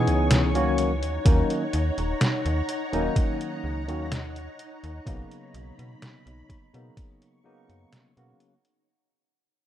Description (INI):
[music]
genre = vaporwave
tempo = 63 BPM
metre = 4/4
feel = straight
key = B major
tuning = A4 = 440 Hz
[part]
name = barky tine electric piano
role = accompaniment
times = 0.0-8.5 s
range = C#3 to G#4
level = -27 LUFS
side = left 1 dB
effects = medium stereo tremolo, lush chorus, vintage 12-bit sampler grit, analog delay
[part]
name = soft string machine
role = sustained chords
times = 0.0-8.9 s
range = E3 to C#6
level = -32 LUFS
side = left 1 dB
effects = ensemble chorus
[part]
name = slap-like FM bass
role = bass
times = 0.0-8.3 s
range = D#1 to B2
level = -28 LUFS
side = equal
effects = none
[part]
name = detuned 8-bit digital drum machine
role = drums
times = 0.1-8.8 s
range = hi-hat, snare drum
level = -26 LUFS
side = equal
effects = overdrive
[part]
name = electronic kick drum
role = drums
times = 1.3-7.2 s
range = none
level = -22 LUFS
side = equal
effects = overdrive
[sound]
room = digital ambience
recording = rough home demo mix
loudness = -22 LUFS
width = side -11 dB against mid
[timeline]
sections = 0.0-8.9 A section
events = fade-out 0.0-8.9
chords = 0.0 C#m7; 0.8 D#m7; 5.1 Bmaj9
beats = 0.30 | 1.26 2.21 3.16 4.11 | 5.07 6.02 6.97 7.92